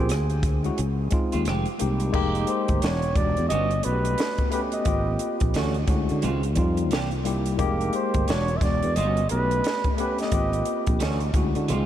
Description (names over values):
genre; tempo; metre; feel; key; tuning
R&B, neo-soul; 88 BPM; 4/4; swing 62% on 16ths; unclear; A4 = 439 Hz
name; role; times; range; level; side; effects
breathy flugelhorn; melody; 0.0-10.8 s; G#4 to E5; -29 LUFS; right 2 dB; none
tine electric piano; accompaniment; 0.0-11.7 s; G3 to G5; -28 LUFS; left 2 dB; medium stereo tremolo
sustaining fretless electric bass; bass; 0.0-11.9 s; E1 to D3; -25 LUFS; equal; wide subtle chorus
compact cocktail drum kit; drums; 0.1-11.9 s; crash cymbal, hi-hat, kick drum, rim click, snare drum; -27 LUFS; equal; none
electric guitar at the edge of break-up; second line; 1.3-11.9 s; Eb3 to G4; -32 LUFS; right 3 dB; lush chorus
room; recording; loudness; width
moderate huge ambient reverb, RT60 3.8 s; dreamy mix soaked in reverb; -22 LUFS; side -11 dB against mid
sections
0.0-2.1 A section; 2.1-11.9 B section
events
none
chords
0.1 Dmaj9; 0.8 Dbmaj9; 1.5 Fm9; 2.8 E9; 3.5 Gmaj9#11; 4.9 Abmaj9; 5.5 Dmaj9; 6.2 Dbmaj9; 6.9 C7; 7.6 Fm9; 8.3 E9; 9.0 Gadd9(#11); 10.3 Abmaj9; 11.0 Dmaj9